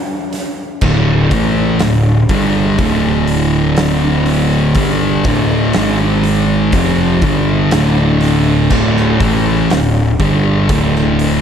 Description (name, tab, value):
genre	stoner and doom metal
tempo	61 BPM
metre	4/4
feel	straight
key	D minor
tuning	A4 = 441 Hz
part	oversized low-tuned drum kit	drums	0.3-11.4 s	crash cymbal, hi-hat, kick drum, snare drum	-19 LUFS	equal	none
part	thick fuzz guitar	riff	0.8-11.4 s	D2 to A3	-15 LUFS	left 7 dB	distortion
part	thick fuzz guitar	riff	0.8-11.4 s	D2 to A3	-16 LUFS	right 9 dB	distortion
part	fuzz picked electric bass	bass	0.8-11.4 s	D1 to A1	-19 LUFS	equal	overdrive
room	little or no reverb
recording	dark, warm production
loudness	-11 LUFS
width	side -8 dB against mid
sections	0.0-11.4 A section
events	none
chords	0.0 D5; 5.8 G#5; 6.7 Dm